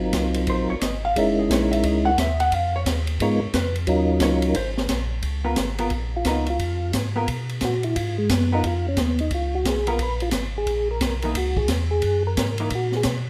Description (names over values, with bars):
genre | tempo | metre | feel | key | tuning
soul jazz organ trio | 176 BPM | 4/4 | swing 64% on 8ths | Db mixolydian | A4 = 440 Hz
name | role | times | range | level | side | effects
percussive tonewheel organ | melody | 0.0-13.0 s | Gb3 to Cb5 | -26 LUFS | equal | slow rotary speaker, chorus vibrato
tonewheel organ | bass | 0.0-13.3 s | Gb1 to Cb3 | -28 LUFS | equal | overdrive, chorus vibrato, slow rotary speaker
open jazz drum kit | drums | 0.1-13.2 s | hi-hat, kick drum, ride cymbal, snare drum | -30 LUFS | equal | none
vintage hollow-body jazz guitar | accompaniment | 0.5-12.7 s | Fb3 to Gb5 | -28 LUFS | equal | none
room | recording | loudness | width
moderate large studio reverb, RT60 0.9 s | none | -23 LUFS | mono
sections
0.0-5.2 A section; 5.2-13.3 A section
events
hollow-body jazz guitar solo 0.0-5.2; tonewheel organ solo 5.2-13.3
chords
0.0 Ab13; 1.2 Gb13; 2.5 Db9; 3.9 Ebm7; 4.6 Absus2; 5.2 Db13; 10.7 Gb9